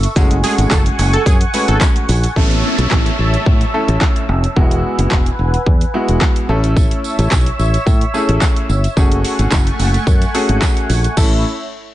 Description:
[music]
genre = dance-pop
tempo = 109 BPM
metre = 4/4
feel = straight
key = A major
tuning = A4 = 440 Hz
[part]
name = filtered supersaw swell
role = sustained chords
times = 0.0-11.4 s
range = A3 to E6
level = -22 LUFS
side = equal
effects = sidechain pumping
[part]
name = fingered electric bass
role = bass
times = 0.0-11.4 s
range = E1 to A2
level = -16 LUFS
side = equal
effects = sidechain pumping
[part]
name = pop drum kit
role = drums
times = 0.0-11.3 s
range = crash cymbal, handclaps, hi-hat, kick drum, shaker, snare drum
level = -15 LUFS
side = equal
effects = none
[part]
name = tambourine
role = percussion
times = 0.0-2.4, 6.8-11.4 s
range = none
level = -31 LUFS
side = right 10 dB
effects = none
[part]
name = clear concert grand piano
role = accompaniment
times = 0.2-11.4 s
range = G#3 to B4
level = -20 LUFS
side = left 1 dB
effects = sidechain pumping
[part]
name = plucky unison lead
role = melody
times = 0.4-1.8 s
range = G#4 to A4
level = -22 LUFS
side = right 2 dB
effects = sidechain pumping, ping-pong delay
[part]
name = downlifter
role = sound effects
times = 2.4-6.8 s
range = none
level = -24 LUFS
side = equal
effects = none
[sound]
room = little or no reverb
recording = nothing above 10.5 kHz, faint mains hum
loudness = -12 LUFS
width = side -14 dB against mid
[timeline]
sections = 0.0-2.4 A section; 2.4-11.2 B section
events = drop 0.0-2.4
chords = 0.2 F#madd9; 2.4 A; 4.6 Eadd9; 6.5 A; 9.0 F#madd9; 11.2 A

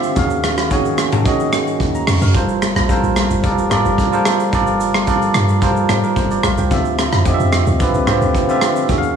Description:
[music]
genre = amapiano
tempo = 110 BPM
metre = 4/4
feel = straight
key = G minor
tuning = A4 = 444 Hz
[part]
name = bell-like tine electric piano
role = accompaniment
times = 0.0-9.2 s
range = D3 to F6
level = -16 LUFS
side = right 1 dB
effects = medium stereo tremolo
[part]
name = modern studio drum kit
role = drums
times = 0.0-9.2 s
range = hi-hat, kick drum, rim click, shaker, toms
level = -18 LUFS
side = equal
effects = vintage 12-bit sampler grit
[part]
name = deep log drum bass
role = bass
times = 0.2-9.2 s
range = F1 to Eb3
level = -20 LUFS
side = equal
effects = none
[sound]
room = light reverb, studio reverb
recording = studio ambience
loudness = -13 LUFS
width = side -7 dB against mid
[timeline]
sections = 0.0-9.2 A section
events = none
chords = 0.2 Ebm11; 2.3 Gm11; 6.7 Dm11

